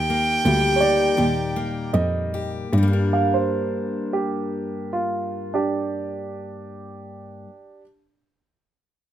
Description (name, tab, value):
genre	honky-tonk and classic country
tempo	74-86 BPM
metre	4/4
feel	straight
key	G minor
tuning	A4 = 441 Hz
part	clear fiddle	melody	0.0-1.9 s	G5	-22 LUFS	right 2 dB	slapback echo
part	picked steel-string acoustic guitar	accompaniment	0.0-7.6 s	G2 to Bb4	-26 LUFS	left 3 dB	none
part	dark cello	bass	0.0-6.7 s	D2 to G2	-24 LUFS	equal	none
part	dark upright piano	second line	0.8-7.8 s	D4 to F5	-26 LUFS	right 4 dB	none
room	light reverb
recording	close, detailed microphones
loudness	-20 LUFS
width	side -11 dB against mid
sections	0.0-2.7 A section; 2.7-5.9 B section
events	slowing down 0.0-2.7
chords	0.0 Eb; 2.7 Gm